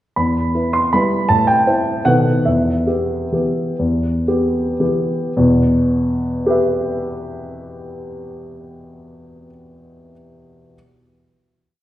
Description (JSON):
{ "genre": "classical, piano waltz", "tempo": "103-171 BPM", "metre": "3/4", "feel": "rubato", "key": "E minor", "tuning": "A4 = 441 Hz", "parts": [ { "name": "dark baby grand piano", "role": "solo", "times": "0.2-10.8 s", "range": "E2 to C6", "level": "-16 LUFS", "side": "equal", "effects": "none" } ], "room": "wet recital hall reverb, RT60 1.8 s", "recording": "heard from further back in the room", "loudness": "-15 LUFS", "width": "side -13 dB against mid", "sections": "0.2-5.4 A section; 5.4-8.6 final chord", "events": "slowing down 1.9-5.4", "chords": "0.2 Em; 1.3 Am; 2.1 B7; 2.5 Em", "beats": "| 0.17 0.55 0.94 | 1.30 1.67 2.06 | 2.46 2.87 3.32 | 3.79 4.27 4.80 | 5.36 5.91 6.46 | 6.99 7.54 8.11" }